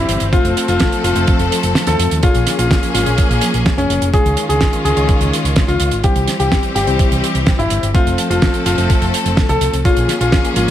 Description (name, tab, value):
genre	italo disco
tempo	126 BPM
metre	4/4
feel	straight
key	unclear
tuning	A4 = 444 Hz
part	warm baby grand piano	melody	0.0-10.7 s	Db4 to A4	-19 LUFS	left 2 dB	ping-pong delay
part	clear studio string section	sustained chords	0.0-10.7 s	Eb3 to A4	-20 LUFS	equal	none
part	tine electric piano	stabs	0.0-10.7 s	G3 to Db5	-24 LUFS	left 4 dB	overdrive, fast stereo tremolo
part	hollow-body short-scale fingered electric bass	bass	0.0-10.7 s	F1 to F2	-19 LUFS	equal	none
part	damped 70s drum kit	drums	0.1-10.7 s	hi-hat, snare drum	-20 LUFS	right 2 dB	none
part	electronic kick drum	drums	0.3-10.4 s	none	-16 LUFS	equal	none
room	light reverb, small room ambience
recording	none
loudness	-12 LUFS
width	side -11 dB against mid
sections	0.0-10.7 A section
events	kick drops out 1.8-2.2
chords	0.3 F; 2.2 Bbm7; 4.1 Dbadd9; 6.0 C; 7.9 F; 9.9 Bbm7